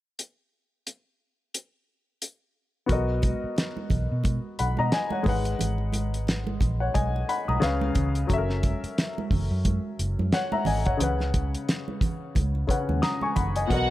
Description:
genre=lush 1970s-style soul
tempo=89 BPM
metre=4/4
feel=swing 58% on 16ths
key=B major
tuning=A4 = 439 Hz
part: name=cloth-damped thuddy drum kit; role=drums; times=0.2-13.9 s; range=hi-hat, kick drum, snare drum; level=-27 LUFS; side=equal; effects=none
part: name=warm baby grand piano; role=accompaniment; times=2.9-13.9 s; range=B2 to D#6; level=-28 LUFS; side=left 3 dB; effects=none
part: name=vintage muted fingered electric bass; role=bass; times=2.9-13.9 s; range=F#1 to B2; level=-27 LUFS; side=equal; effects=none
part: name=congas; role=percussion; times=2.9-13.9 s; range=none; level=-34 LUFS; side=right 6 dB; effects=none
part: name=warm studio violin section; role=second line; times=13.7-13.9 s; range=F#4 to F#5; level=-25 LUFS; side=right 1 dB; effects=none
room=little or no reverb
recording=none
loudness=-24 LUFS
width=side -15 dB against mid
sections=0.2-2.9 A section; 2.9-13.7 B section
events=none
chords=0.2 N.C.; 2.9 Bmaj7; 5.3 G#m7; 7.6 C#7; 8.3 F#7; 11.0 C#7sus4

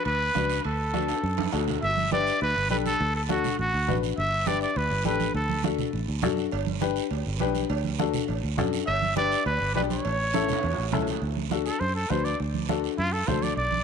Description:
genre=latin, cumbia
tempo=204 BPM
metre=4/4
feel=straight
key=D major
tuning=A4 = 440 Hz
part: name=breathy trumpet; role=melody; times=0.0-5.6, 8.9-13.8 s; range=F4 to E5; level=-27 LUFS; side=right 1 dB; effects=none
part: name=fingered electric bass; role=bass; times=0.1-13.8 s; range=G1 to F#2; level=-30 LUFS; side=right 1 dB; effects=none
part: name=congas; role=percussion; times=0.1-13.8 s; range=none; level=-32 LUFS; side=right 12 dB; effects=none
part: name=guiro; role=percussion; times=0.1-13.8 s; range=none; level=-39 LUFS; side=right 17 dB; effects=none
part: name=timbales and cowbell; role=percussion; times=0.1-1.7, 6.5-11.2 s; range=none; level=-36 LUFS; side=right 16 dB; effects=none
part: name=clear upright piano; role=accompaniment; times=0.3-13.5 s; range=C#4 to D5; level=-30 LUFS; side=left 14 dB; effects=none
room=light reverb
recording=1960s-style stereo with parts hard left and right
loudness=-24 LUFS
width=side -6 dB against mid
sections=0.0-1.8 A section; 1.8-11.2 B section; 11.2-13.8 C section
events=drum fill 1.1-1.8, 10.3-11.2; trumpet solo 11.2-13.8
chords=0.0 Bm; 0.6 D; 1.8 Gadd9; 3.0 D; 4.2 Gadd9; 5.3 D; 6.5 G; 7.7 D; 8.9 G; 10.0 A; 11.2 D

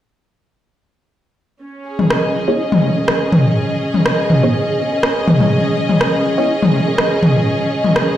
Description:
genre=minimal techno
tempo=123 BPM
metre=4/4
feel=swing 53% on 16ths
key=unclear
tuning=A4 = 439 Hz
part: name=warm studio string section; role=texture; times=1.6-8.2 s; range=C#4 to D#5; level=-18 LUFS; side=equal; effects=none
part: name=round analog bass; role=bass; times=2.0-7.9 s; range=C#2 to F#2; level=-28 LUFS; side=right 1 dB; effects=high-pass filter
part: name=electronic toms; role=percussion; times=2.0-7.9 s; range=none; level=-16 LUFS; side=left 1 dB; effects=overdrive, small room ambience, digital delay
part: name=electronic rim click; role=drums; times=2.1-8.1 s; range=none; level=-18 LUFS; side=right 1 dB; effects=overdrive, small room ambience
part: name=filtered dub chord stab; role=stabs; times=2.5-6.5 s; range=B3 to C#5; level=-21 LUFS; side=right 1 dB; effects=phaser, lush chorus, digital delay
room=moderate plate reverb, RT60 0.9 s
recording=played on a big sound system in a bare room, large studio reverb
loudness=-13 LUFS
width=side -12 dB against mid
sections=1.6-8.2 A section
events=none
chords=1.6 C#5

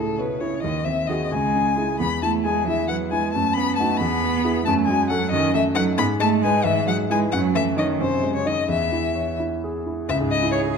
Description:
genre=quick classical-period movement for piano trio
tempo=89 BPM (dotted quarters)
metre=6/8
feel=straight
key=C# minor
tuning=A4 = 440 Hz
part: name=warm violin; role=melody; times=0.0-10.6 s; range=A4 to B5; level=-23 LUFS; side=left 7 dB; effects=none
part: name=rich cello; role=second line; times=0.0-10.8 s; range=A2 to G#4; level=-25 LUFS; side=right 8 dB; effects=none
part: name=warm concert grand piano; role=accompaniment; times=0.0-10.8 s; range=C#2 to D#5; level=-23 LUFS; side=equal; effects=none
room=wet recital hall reverb, RT60 1.6 s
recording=dark, warm production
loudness=-19 LUFS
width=side -6 dB against mid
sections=0.0-10.1 A section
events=none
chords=0.0 C#m; 0.6 G#7/D#; 1.3 C#m; 2.0 E; 3.3 B/F#; 4.0 E; 4.7 F#m; 5.3 D#dim/F#; 6.0 G#m; 6.7 E/G#; 7.3 D#m7b5/F#; 8.0 G#7/F#; 8.7 C#m/E; 10.1 C#m

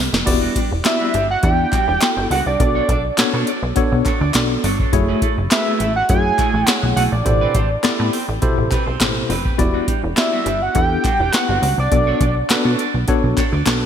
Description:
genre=early-eighties boogie funk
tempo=103 BPM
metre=4/4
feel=straight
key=E dorian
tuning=A4 = 440 Hz
part: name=plucky analog bass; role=bass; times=0.0-13.9 s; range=E1 to B2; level=-20 LUFS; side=equal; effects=none
part: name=clean electric guitar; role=riff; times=0.1-13.9 s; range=G3 to D5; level=-27 LUFS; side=right 6 dB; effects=wide subtle chorus
part: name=booming analog drum machine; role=drums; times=0.1-13.8 s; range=crash cymbal, handclaps, hi-hat, kick drum, snare drum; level=-19 LUFS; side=equal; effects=gated reverb
part: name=tine electric piano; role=accompaniment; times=0.3-13.9 s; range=B2 to D5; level=-22 LUFS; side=left 3 dB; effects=medium stereo tremolo
part: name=group handclap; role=percussion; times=0.8-13.8 s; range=none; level=-31 LUFS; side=left 3 dB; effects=none
part: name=fat analog lead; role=melody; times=0.9-12.6 s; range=D5 to G#5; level=-20 LUFS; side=right 2 dB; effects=chorus, ping-pong delay
room=light reverb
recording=bright 1980s-style digital production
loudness=-15 LUFS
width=side -8 dB against mid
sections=0.3-13.9 A section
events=drum fill 0.0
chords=0.3 Em9; 2.6 Bm9; 4.9 F#m9; 7.3 Am9; 9.6 Em9; 11.9 Bm9

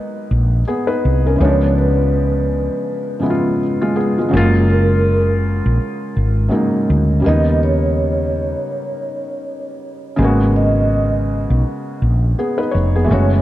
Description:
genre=lo-fi hip hop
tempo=82 BPM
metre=4/4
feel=swing 60% on 16ths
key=G# minor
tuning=A4 = 440 Hz
part: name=felt-muted upright piano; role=accompaniment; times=0.0-13.4 s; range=C#3 to C#5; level=-18 LUFS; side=equal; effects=cassette tape, low-pass filter
part: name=woody fretless electric bass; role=bass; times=0.3-13.4 s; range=E#1 to D#2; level=-15 LUFS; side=equal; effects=none
part: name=vibraphone with soft mallets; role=melody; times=1.4-13.4 s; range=A#4 to D#5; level=-24 LUFS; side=right 2 dB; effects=low-pass filter, diffuse ambient delay
room=moderate cathedral reverb, RT60 5.5 s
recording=dreamy mix soaked in reverb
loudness=-14 LUFS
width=side -14 dB against mid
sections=0.0-13.4 A section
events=none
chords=0.0 G#m9; 1.4 C#7b9; 4.3 F#maj9; 7.2 D#7b13; 10.2 G#m11

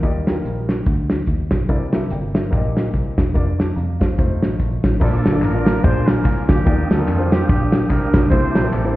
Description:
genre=uptempo gospel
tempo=145 BPM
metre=4/4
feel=swing 58% on 8ths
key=Bb major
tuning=A4 = 441 Hz
part: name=warm grand piano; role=accompaniment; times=0.0-9.0 s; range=Bb2 to D6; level=-25 LUFS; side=left 2 dB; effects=none
part: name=fingered electric bass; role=bass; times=0.0-8.9 s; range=E1 to F2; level=-20 LUFS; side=equal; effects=none
part: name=warm soul drum kit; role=drums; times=0.0-8.8 s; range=crash cymbal, hi-hat, kick drum, ride cymbal, snare drum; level=-18 LUFS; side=equal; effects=none
part: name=warm horn section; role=melody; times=5.0-9.0 s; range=Bb3 to C5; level=-24 LUFS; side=equal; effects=none
part: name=mellow tonewheel organ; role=sustained chords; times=5.0-9.0 s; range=Bb3 to Eb6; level=-27 LUFS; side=right 3 dB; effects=slow rotary speaker, chorus vibrato
part: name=tambourine and handclaps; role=percussion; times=5.0-8.8 s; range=none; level=-39 LUFS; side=left 5 dB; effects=none
room=light reverb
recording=heard muffled through a wall, stone room reverb, EQ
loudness=-15 LUFS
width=side -16 dB against mid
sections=0.0-5.0 A section; 5.0-9.0 B section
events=none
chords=0.0 Ebmaj9; 1.7 C13; 2.5 Eb/Bb; 3.4 Bb/F; 4.2 F7; 5.0 Bbmaj7; 5.8 Bb7; 6.7 Ebmaj9; 8.3 C13

